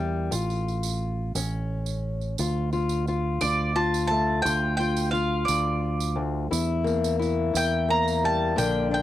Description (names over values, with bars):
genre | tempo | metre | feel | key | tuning
acoustic folk duo or small band | 58 BPM (dotted quarters) | 6/8 | straight | D minor | A4 = 441 Hz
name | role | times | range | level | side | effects
fingerpicked acoustic archtop guitar | accompaniment | 0.0-9.0 s | D2 to F4 | -28 LUFS | left 6 dB | cassette tape
fingered electric bass | bass | 0.0-9.0 s | A1 to E2 | -27 LUFS | right 2 dB | none
tambourine | percussion | 0.3-8.7 s | none | -35 LUFS | right 11 dB | none
bowl-back mandolin | melody | 3.4-9.0 s | D5 to Bb5 | -26 LUFS | right 2 dB | none
room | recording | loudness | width
little or no reverb | home recording on cassette | -23 LUFS | side -13 dB against mid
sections
0.0-2.4 A section; 2.4-9.0 B section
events
none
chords
0.3 F/A; 1.4 A; 2.4 Dm; 4.5 Dmadd11; 6.5 Edim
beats
| 0.33 1.36 | 2.39 3.42 | 4.45 5.48 | 6.51 7.54 | 8.57